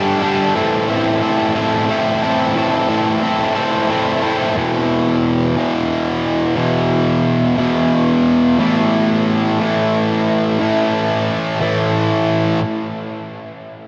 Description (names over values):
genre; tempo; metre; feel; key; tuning
rock; 60 BPM (dotted quarters); 6/8; straight; A minor; A4 = 438 Hz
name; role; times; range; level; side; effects
fuzz guitar; solo; 0.0-12.6 s; E2 to A4; -17 LUFS; equal; distortion, delay
room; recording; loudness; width
wet huge ambient reverb, RT60 5.5 s; dreamy mix soaked in reverb; -16 LUFS; mono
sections
0.0-4.6 A section; 4.6-12.6 B section; 12.6-13.9 C section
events
none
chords
0.0 Gsus2; 0.6 Am; 4.6 E5; 8.6 A5; 12.6 N.C.